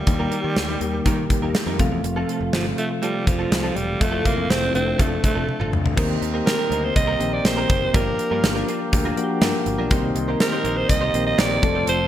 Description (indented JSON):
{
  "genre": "1980s-style pop",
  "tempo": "122 BPM",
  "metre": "4/4",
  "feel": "straight",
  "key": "unclear",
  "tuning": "A4 = 440 Hz",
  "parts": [
    { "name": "breathy alto saxophone", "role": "melody", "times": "0.0-12.1 s", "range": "F3 to Eb5", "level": "-24 LUFS", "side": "right 2 dB", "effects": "digital delay" },
    { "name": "soft electric-piano-like synth keys", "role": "accompaniment", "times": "0.0-12.1 s", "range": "C3 to A4", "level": "-25 LUFS", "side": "left 3 dB", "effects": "chorus, tremolo" },
    { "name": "direct-recorded clean electric guitar", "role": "riff", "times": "0.1-12.0 s", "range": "G3 to C5", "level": "-31 LUFS", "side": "right 3 dB", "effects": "ensemble chorus" },
    { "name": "modern bright picked electric bass", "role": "bass", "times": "0.1-12.1 s", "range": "E1 to Eb3", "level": "-27 LUFS", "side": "equal", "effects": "none" },
    { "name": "gated 80s drum kit", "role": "drums", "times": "0.1-12.0 s", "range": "crash cymbal, hi-hat, kick drum, snare drum, toms", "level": "-22 LUFS", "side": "equal", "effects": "none" },
    { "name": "mellow accordion", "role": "sustained chords", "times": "6.0-12.1 s", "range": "A4 to D6", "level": "-31 LUFS", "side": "equal", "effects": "none" }
  ],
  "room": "moderate lush hall reverb, RT60 1.7 s",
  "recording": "bright 1980s-style digital production",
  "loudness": "-19 LUFS",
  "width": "side -11 dB against mid",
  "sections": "0.0-6.0 A section; 6.0-12.1 B section",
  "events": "drum fill 5.5-6.0",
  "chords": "0.1 Eb; 1.8 F; 6.0 Eb6; 7.9 Gm7; 9.9 Cm7"
}